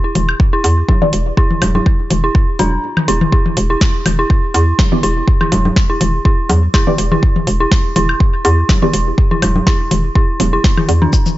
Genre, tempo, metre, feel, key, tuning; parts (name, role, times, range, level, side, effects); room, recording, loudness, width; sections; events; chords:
minimal techno; 123 BPM; 4/4; swing 54% on 16ths; E minor; A4 = 440 Hz
dark detuned synth bell; riff; 0.0-11.1 s; D4 to E4; -19 LUFS; equal; chorus, sidechain pumping, dub echo
hollow knocking FM bass; bass; 0.2-11.1 s; E1 to E2; -15 LUFS; equal; sidechain pumping
booming analog drum machine; drums; 0.2-11.4 s; hi-hat, shaker, snare drum; -20 LUFS; right 1 dB
electronic toms, woodblock and congas; percussion; 0.2-11.4 s; -18 LUFS; left 2 dB; digital delay
electronic kick drum; drums; 0.4-11.2 s; -13 LUFS; equal
filtered dub chord stab; stabs; 1.0-11.0 s; B3 to D5; -21 LUFS; right 1 dB; phaser, wide subtle chorus, digital delay
digital ambience; nothing above 7.8 kHz; -11 LUFS; side -16 dB against mid
0.0-11.4 A section
kick drops out 2.8-3.3
0.0 E7(no3)